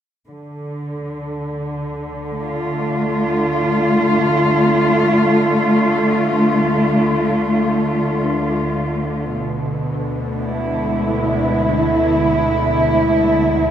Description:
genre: dark ambient drone.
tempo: 53 BPM.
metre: 4/4.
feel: straight.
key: unclear.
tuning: A4 = 438 Hz.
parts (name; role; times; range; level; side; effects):
muted studio cello section; sustained chords; 0.3-13.7 s; B2 to F4; -16 LUFS; equal; none.
bowed-like drone; drone; 0.9-13.7 s; D2 to D3; -26 LUFS; equal; built-in reverb, phaser.
dark detuned synth bell; arpeggios; 4.6-9.6 s; C4 to A4; -33 LUFS; left 5 dB; none.
room: wet spring reverb, RT60 2.5 s.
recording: echo-heavy mix.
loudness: -15 LUFS.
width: side -9 dB against mid.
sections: 0.3-13.7 A section.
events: fade-in on synth drone 0.3-13.7.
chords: 0.3 Dm; 9.3 E.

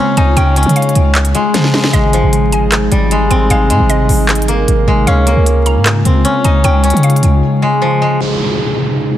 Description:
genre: hip hop, trap.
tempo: 153 BPM.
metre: 4/4.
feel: half-time.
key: Ab major.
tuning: A4 = 441 Hz.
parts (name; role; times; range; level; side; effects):
steel-string zither; melody; 0.0-9.2 s; F3 to Ab4; -15 LUFS; left 1 dB; low-pass filter, digital delay.
ethereal airy pad; sustained chords; 0.0-9.2 s; C3 to F4; -17 LUFS; equal; ensemble chorus, built-in reverb, low-pass filter.
mallet-like synth pluck; second line; 0.2-7.4 s; Eb5 to Bb5; -23 LUFS; right 1 dB; chorus, digital delay.
hard-hitting 808-style bass; bass; 0.2-7.4 s; Ab1 to Db3; -12 LUFS; equal; none.
trap drum kit; drums; 0.2-7.3 s; handclaps, hi-hat, rim click, snare drum; -17 LUFS; equal; none.
downlifter; sound effects; 8.2-9.2 s; none; -18 LUFS; right 1 dB; none.
room: light reverb.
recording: dense, heavily limited modern master, vinyl crackle.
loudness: -9 LUFS.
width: side -12 dB against mid.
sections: 0.0-8.2 A section.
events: drum fill 1.5-1.9; break 7.4-8.2.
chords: 0.0 Db; 1.9 Ab; 5.1 Db; 8.2 Ab.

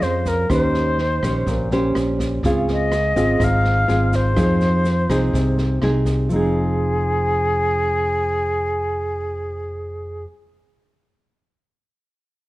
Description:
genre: bossa nova.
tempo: 124 BPM.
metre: 4/4.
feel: straight.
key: F minor.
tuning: A4 = 440 Hz.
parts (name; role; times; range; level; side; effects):
silver concert flute; melody; 0.0-10.2 s; Ab4 to F5; -22 LUFS; equal; none.
nylon-string guitar; accompaniment; 0.0-10.3 s; Ab2 to C5; -21 LUFS; equal; none.
fingered electric bass; bass; 0.0-10.3 s; F1 to F2; -22 LUFS; equal; none.
open jazz drum kit; drums; 0.0-6.1 s; kick drum, rim click, snare drum; -28 LUFS; equal; none.
egg shaker; percussion; 0.0-6.4 s; none; -46 LUFS; right 6 dB; none.
room: moderate large studio reverb, RT60 1.3 s.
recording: worn, warbling old tape, cassette tape, warbly pitch drift.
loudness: -17 LUFS.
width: side -18 dB against mid.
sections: 0.0-6.3 A section; 6.3-10.2 B section.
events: none.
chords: 0.0 Bbm9; 0.5 Eb6; 2.4 Dbmaj7; 4.4 Fm7.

